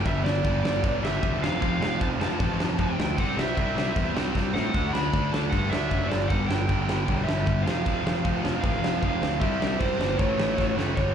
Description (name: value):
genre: punk rock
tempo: 154 BPM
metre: 4/4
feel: straight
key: unclear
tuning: A4 = 435 Hz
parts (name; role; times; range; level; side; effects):
- lead guitar through a small cranked amp; melody; 0.0-11.1 s; C5 to B5; -30 LUFS; right 2 dB; overdrive, slapback echo
- distorted electric guitar; riff; 0.0-11.1 s; F2 to D4; -32 LUFS; right 15 dB; overdrive, slapback echo
- sludgy distorted guitar; riff; 0.0-11.1 s; F2 to D4; -32 LUFS; left 12 dB; overdrive
- thick fuzz guitar; riff; 0.0-11.1 s; F2 to D4; -34 LUFS; equal; none
- fuzz picked electric bass; bass; 0.1-11.1 s; E1 to A2; -28 LUFS; equal; overdrive
- big rock drum kit; drums; 0.1-11.1 s; crash cymbal, kick drum, snare drum; -28 LUFS; equal; none
room: little or no reverb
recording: live gig heard through the venue's PA, club reverb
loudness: -23 LUFS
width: side -8 dB against mid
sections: 0.0-11.0 A section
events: drum fill 4.3-4.7, 10.6-11.0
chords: 0.0 G5; 1.4 F; 3.2 C; 4.7 D; 6.1 G5; 7.7 F5; 9.4 C5; 10.2 A